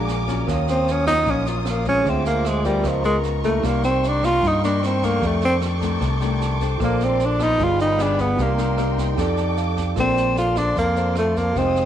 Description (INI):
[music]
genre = bossa nova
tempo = 152 BPM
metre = 4/4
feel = straight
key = Bb major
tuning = A4 = 440 Hz
[part]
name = breathy tenor saxophone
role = melody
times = 0.0-11.9 s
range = F3 to F4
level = -21 LUFS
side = equal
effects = none
[part]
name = mellow tine electric piano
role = accompaniment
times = 0.0-11.9 s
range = Eb4 to A5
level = -30 LUFS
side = right 12 dB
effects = none
[part]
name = nylon-string guitar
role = accompaniment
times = 0.0-11.9 s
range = F2 to D5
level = -28 LUFS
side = left 12 dB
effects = none
[part]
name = dark symphonic violin section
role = sustained chords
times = 0.0-11.9 s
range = F4 to Eb6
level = -30 LUFS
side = right 1 dB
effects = none
[part]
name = fingered electric bass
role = bass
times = 0.0-11.9 s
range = F1 to G2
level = -23 LUFS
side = equal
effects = none
[part]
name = jazz brush drum kit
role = drums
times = 0.1-11.8 s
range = kick drum, rim click, snare drum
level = -31 LUFS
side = right 3 dB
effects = none
[sound]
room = light reverb, small room reverb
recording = 1960s-style stereo with parts hard left and right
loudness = -18 LUFS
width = side -10 dB against mid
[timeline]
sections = 0.0-10.0 A section; 10.0-11.9 B section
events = tenor saxophone solo 0.0-10.0; tine electric piano fill 6.2-6.8, 9.2-10.0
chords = 0.5 Ebm9; 2.1 Dm7b5; 2.9 Db13; 3.6 Cm7; 5.2 F13; 6.8 Bbmaj9; 7.6 G7b9; 8.4 Cm7; 9.2 F13; 10.0 Bbmaj9